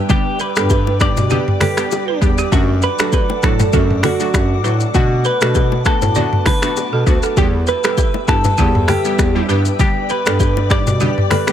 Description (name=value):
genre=afrobeats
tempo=99 BPM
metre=4/4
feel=swing 55% on 16ths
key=unclear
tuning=A4 = 440 Hz
part: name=glassy wavetable pluck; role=accompaniment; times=0.0-11.5 s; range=F#3 to G4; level=-22 LUFS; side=equal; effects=chorus, tape echo
part: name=glassy FM pad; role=sustained chords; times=0.0-11.5 s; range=A4 to E6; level=-26 LUFS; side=left 1 dB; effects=ensemble chorus, built-in reverb
part: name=clean electric guitar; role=melody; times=0.1-11.5 s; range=F#4 to D5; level=-21 LUFS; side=equal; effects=phaser, tape echo
part: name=afro-pop drum kit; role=drums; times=0.1-11.5 s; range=finger snaps, hi-hat, kick drum, rim click, shaker, toms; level=-17 LUFS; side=equal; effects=overdrive, tape echo
part: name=congas and bongos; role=percussion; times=0.1-11.5 s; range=none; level=-25 LUFS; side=left 6 dB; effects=tape echo
part: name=balafon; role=riff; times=0.4-11.4 s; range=G4 to D5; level=-25 LUFS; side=right 8 dB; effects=tape echo
part: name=dark bass clarinet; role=bass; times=0.6-11.1 s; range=D2 to B2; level=-18 LUFS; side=equal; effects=none
room=little or no reverb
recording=echo-heavy mix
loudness=-13 LUFS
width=side -10 dB against mid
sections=0.0-11.5 A section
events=none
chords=0.0 G; 2.5 D/F#; 4.9 Bm7; 7.4 Em; 9.5 G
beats=| 0.10 0.70 1.31 1.92 | 2.52 3.13 3.73 4.34 | 4.95 5.55 6.16 6.76 | 7.37 7.98 8.58 9.19 | 9.79 10.40 11.01